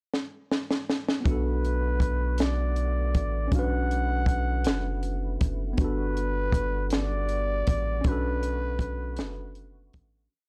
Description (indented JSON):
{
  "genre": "slow six-eight R&B",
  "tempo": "53 BPM (dotted quarters)",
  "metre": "6/8",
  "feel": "straight",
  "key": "B minor",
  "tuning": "A4 = 439 Hz",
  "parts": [
    { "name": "compact cocktail drum kit", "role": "drums", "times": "0.1-10.1 s", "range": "hi-hat, kick drum, snare drum", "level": "-29 LUFS", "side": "equal", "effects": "none" },
    { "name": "tine electric piano", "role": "accompaniment", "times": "1.2-10.3 s", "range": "B3 to B4", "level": "-36 LUFS", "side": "equal", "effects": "overdrive" },
    { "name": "percussive tonewheel organ", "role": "sustained chords", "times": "1.2-10.3 s", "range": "D3 to F#4", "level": "-46 LUFS", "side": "equal", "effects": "chorus vibrato, slow rotary speaker" },
    { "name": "breathy flugelhorn", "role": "melody", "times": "1.3-9.9 s", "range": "B4 to F#5", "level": "-35 LUFS", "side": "equal", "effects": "none" },
    { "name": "round analog bass", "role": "bass", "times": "1.3-10.3 s", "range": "F#1 to B1", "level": "-31 LUFS", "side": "equal", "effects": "none" }
  ],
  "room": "small room reverb",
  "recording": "dry, gritty hardware recording, transformer saturation",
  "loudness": "-27 LUFS",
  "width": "mono",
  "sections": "0.0-1.3 pickup bar; 1.3-10.3 chorus",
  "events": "drum fill 0.1-1.3; fade-out 8.0-10.3",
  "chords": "0.0 N.C.; 1.3 Bm7; 5.8 Gmaj7; 8.0 Bm9"
}